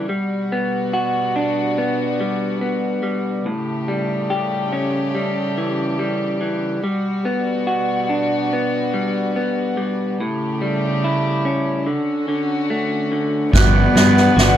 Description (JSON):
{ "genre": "post-rock", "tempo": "71 BPM", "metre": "4/4", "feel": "straight", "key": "G lydian", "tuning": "A4 = 441 Hz", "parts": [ { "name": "warm studio string section", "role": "sustained chords", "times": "0.0-14.6 s", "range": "B2 to F#5", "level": "-25 LUFS", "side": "equal", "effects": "none" }, { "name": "electric guitar through a small old amp", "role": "arpeggios", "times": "0.0-14.6 s", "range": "A2 to G4", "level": "-20 LUFS", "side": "equal", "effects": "none" }, { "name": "rich cello", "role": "melody", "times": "13.5-14.6 s", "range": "B3", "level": "-18 LUFS", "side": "left 1 dB", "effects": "analog delay" }, { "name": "glockenspiel with hard plastic mallets", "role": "arpeggios", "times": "13.5-14.6 s", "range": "F#6", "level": "-22 LUFS", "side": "right 8 dB", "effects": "none" }, { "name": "fuzz fingered electric bass", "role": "bass", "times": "13.5-14.6 s", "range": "G1 to G2", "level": "-16 LUFS", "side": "equal", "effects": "overdrive" }, { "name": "soft-mallet drum kit", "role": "drums", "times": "13.5-14.6 s", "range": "kick drum, snare drum", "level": "-15 LUFS", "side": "right 1 dB", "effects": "none" } ], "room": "wet studio ambience, RT60 0.5 s", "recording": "band playing live in one room", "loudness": "-17 LUFS", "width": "side -10 dB against mid", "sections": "0.0-13.5 A section; 13.5-14.6 B section", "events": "none", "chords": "0.1 Gmaj7; 3.5 A7; 6.8 Gmaj7; 10.2 A7; 11.9 Dmaj7; 13.5 Gmaj7" }